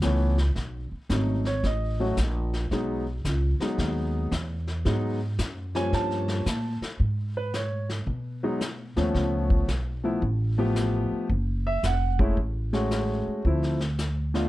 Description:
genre	jazz piano trio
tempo	112 BPM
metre	4/4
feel	swing 66% on 8ths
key	E major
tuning	A4 = 440 Hz
part	warm concert grand piano	melody	0.0-14.5 s	E3 to A5	-28 LUFS	left 1 dB	none
part	upright bass	bass	0.0-14.5 s	F1 to B2	-27 LUFS	equal	none
part	vintage brush drum kit	drums	0.0-14.5 s	brushed snare drum, hi-hat, kick drum, snare drum	-30 LUFS	left 1 dB	none
room	light reverb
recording	dark, warm production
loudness	-24 LUFS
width	side -16 dB against mid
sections	0.0-7.0 A section; 7.0-14.5 B section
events	none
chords	0.0 G6 (rootless); 0.6 B7; 2.7 Emaj7; 5.9 Gm9b5; 7.0 G#m; 9.1 C#7b13; 11.3 F#madd9; 13.4 Dm7

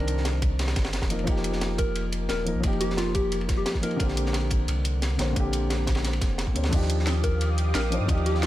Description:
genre	liquid drum and bass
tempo	176 BPM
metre	4/4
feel	straight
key	unclear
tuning	A4 = 440 Hz
part	felt-muted upright piano	accompaniment	0.0-8.5 s	D3 to D5	-29 LUFS	left 2 dB	digital delay
part	sub bass with octave	bass	0.0-8.5 s	Eb1 to G2	-27 LUFS	equal	none
part	crunchy breakbeat drum kit	drums	0.0-8.5 s	ride cymbal, snare drum	-34 LUFS	equal	high-pass filter on cymbals, studio reverb, high-pass filter on snare, high-pass filter on room
part	drum and bass drum kit	drums	0.1-8.5 s	crash cymbal, hi-hat, snare drum	-34 LUFS	equal	studio reverb
part	electronic kick drum	drums	0.4-8.2 s	none	-26 LUFS	equal	studio reverb
part	soft struck synth lead	melody	1.8-4.0, 7.2-8.5 s	F4 to Bb4	-32 LUFS	equal	chorus, cassette tape, ping-pong delay
part	lush unison pad	sustained chords	6.9-8.5 s	G4 to Eb6	-35 LUFS	left 1 dB	chorus, phaser, sidechain pumping
room	small room ambience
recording	none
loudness	-23 LUFS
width	side -14 dB against mid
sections	0.0-8.5 A section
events	none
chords	0.0 Cm9; 1.1 F9sus4; 4.0 Bb69; 6.7 Ebmaj9

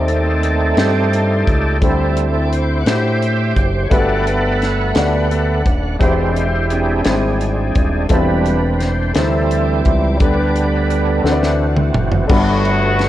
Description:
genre	slow gospel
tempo	57 BPM (dotted quarters)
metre	6/8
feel	straight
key	G major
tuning	A4 = 440 Hz
part	warm upright piano	accompaniment	0.0-13.1 s	G2 to D5	-22 LUFS	left 3 dB	none
part	overdriven tonewheel organ	sustained chords	0.0-13.1 s	D3 to F#5	-18 LUFS	right 2 dB	slow rotary speaker, chorus vibrato
part	warm studio string section	sustained chords	0.0-12.3 s	D5 to D6	-32 LUFS	left 6 dB	none
part	fingered electric bass with an envelope filter	bass	0.0-13.1 s	Eb1 to A2	-18 LUFS	equal	tube saturation
part	tight funk drum kit	drums	0.1-13.1 s	crash cymbal, hi-hat, kick drum, ride cymbal, snare drum, toms	-18 LUFS	equal	none
part	warm horn section	melody	12.3-13.1 s	A3 to F#4	-18 LUFS	left 1 dB	none
room	light reverb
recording	worn, warbling old tape, cassette tape, warbly pitch drift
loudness	-13 LUFS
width	side -13 dB against mid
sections	0.0-12.3 A section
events	tonewheel organ solo 0.0-12.3; drum fill 11.2-12.3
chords	0.0 Cm6/Eb; 1.8 D9sus4; 3.9 Gmaj9; 6.0 E7alt; 8.1 Am11/E; 9.2 D9sus4; 10.2 G/D; 11.2 D7; 12.3 Gmaj9

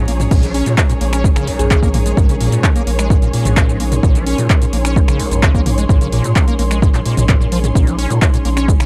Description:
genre	acid house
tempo	129 BPM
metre	4/4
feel	straight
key	Bb minor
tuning	A4 = 441 Hz
part	dark analog pad	sustained chords	0.0-8.9 s	Ab3 to Db5	-27 LUFS	equal	chorus, phaser, sidechain pumping
part	acid bass, square	riff	0.0-8.9 s	Bb1 to Db4	-23 LUFS	equal	ensemble chorus, sidechain pumping, dub echo
part	saturated sub bass	bass	0.0-8.9 s	Bb1 to Bb2	-21 LUFS	equal	sidechain pumping
part	clear symphonic string section	texture	0.0-8.9 s	Ab4 to C6	-28 LUFS	equal	sidechain pumping
part	punchy analog drum machine	drums	0.1-8.9 s	crash cymbal, finger snaps, handclaps, hi-hat, shaker, toms	-23 LUFS	equal	overdrive
part	electronic kick drum	drums	0.3-8.8 s	none	-16 LUFS	equal	none
part	mallet-like synth pluck	melody	1.6-1.9 s	Ab4	-27 LUFS	equal	chorus, dub echo
room	little or no reverb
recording	dark, warm production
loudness	-14 LUFS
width	mono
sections	0.0-8.9 A section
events	none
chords	0.0 Bbm7

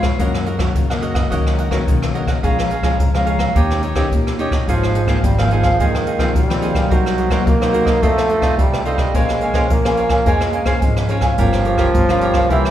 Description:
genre	samba and choro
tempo	107 BPM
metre	4/4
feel	straight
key	unclear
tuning	A4 = 440 Hz
part	cavaquinho	accompaniment	0.0-12.7 s	Eb4 to Bb5	-21 LUFS	right 2 dB	none
part	nylon-string guitar	accompaniment	0.0-12.7 s	F2 to C5	-23 LUFS	left 4 dB	none
part	upright bass	bass	0.0-12.7 s	G1 to Gb2	-22 LUFS	equal	none
part	jazz brush drum kit	drums	0.0-12.7 s	hi-hat, kick drum, rim click	-19 LUFS	equal	none
part	clear trombone	second line	4.7-12.7 s	Eb3 to Bb3	-20 LUFS	right 2 dB	none
room	wet scoring stage reverb, RT60 1.9 s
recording	recorded in a church or concert hall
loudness	-14 LUFS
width	side -11 dB against mid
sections	0.0-12.7 A section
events	none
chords	0.2 Gb6; 2.4 Bbm7; 3.6 Eb7; 4.7 Ab69; 6.9 Cm7b5; 8.0 F7; 9.2 Bbm9; 11.4 Gm7b5

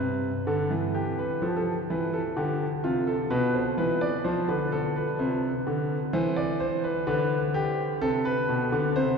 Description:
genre	classical, baroque-style two-part invention for grand piano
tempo	64 BPM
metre	4/4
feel	straight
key	C major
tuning	A4 = 441 Hz
part	warm grand piano	solo	0.0-9.2 s	B2 to D5	-24 LUFS	equal	none
room	wet cathedral reverb, RT60 5.6 s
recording	heard from further back in the room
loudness	-24 LUFS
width	side -5 dB against mid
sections	0.0-9.2 A section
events	none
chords	0.0 C; 1.4 F; 3.3 Bmadd11; 5.2 C; 7.1 G/D

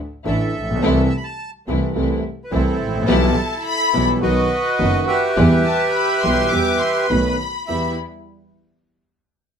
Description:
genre	tango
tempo	105 BPM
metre	4/4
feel	rubato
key	E minor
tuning	A4 = 440 Hz
part	warm concert grand piano	accompaniment	0.2-7.9 s	F#1 to A4	-21 LUFS	equal	none
part	bandoneon	melody	0.3-8.0 s	C4 to B5	-20 LUFS	right 2 dB	none
part	warm studio string section	stabs	0.3-7.9 s	F#3 to E4	-26 LUFS	left 1 dB	none
part	clear double bass	bass	0.3-7.9 s	F#1 to E2	-21 LUFS	right 1 dB	none
part	clear studio violin section	second line	3.1-7.9 s	A5 to D6	-22 LUFS	left 4 dB	none
room	moderate studio reverb, RT60 0.6 s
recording	close, detailed microphones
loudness	-16 LUFS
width	side -7 dB against mid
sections	0.0-7.7 A section; 7.7-9.6 B section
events	none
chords	0.0 Dsus2; 0.8 Am/C; 3.1 Em/B; 4.2 B; 5.4 Em; 7.1 B7; 7.7 Em

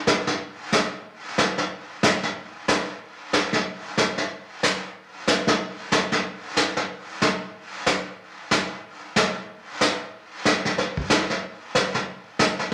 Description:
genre	country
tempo	185 BPM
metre	4/4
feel	swing 61% on 8ths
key	none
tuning	none
part	vintage brush drum kit	drums	0.1-12.7 s	brushed snare drum, hi-hat, kick drum, snare drum	-24 LUFS	equal	none
room	wet large studio reverb, RT60 0.9 s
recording	none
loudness	-24 LUFS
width	mono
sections	0.0-12.7 A section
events	none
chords	none

